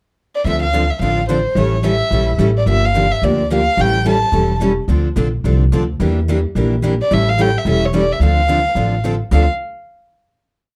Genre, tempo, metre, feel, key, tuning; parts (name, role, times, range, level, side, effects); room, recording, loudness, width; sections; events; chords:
acoustic string swing (jazz manouche); 217 BPM; 4/4; swing 56% on 8ths; D minor; A4 = 438 Hz
warm violin; melody; 0.4-4.6, 7.0-9.5 s; C5 to A5; -21 LUFS; equal
upright bass; bass; 0.4-9.5 s; E1 to E2; -19 LUFS; equal
picked steel-string acoustic guitar; accompaniment; 0.5-9.4 s; D3 to A4; -22 LUFS; equal
picked steel-string acoustic guitar; accompaniment; 0.5-9.5 s; D3 to Bb4; -27 LUFS; equal
light reverb; dark, warm production; -16 LUFS; mono
0.0-0.5 pickup bar; 0.5-9.3 A section; 9.3-10.4 final chord
0.5 Dm7; 1.6 A7; 2.7 Gm7; 3.8 A7; 4.9 Dm7; 6.0 Em7b5; 7.1 A7; 8.2 Dm7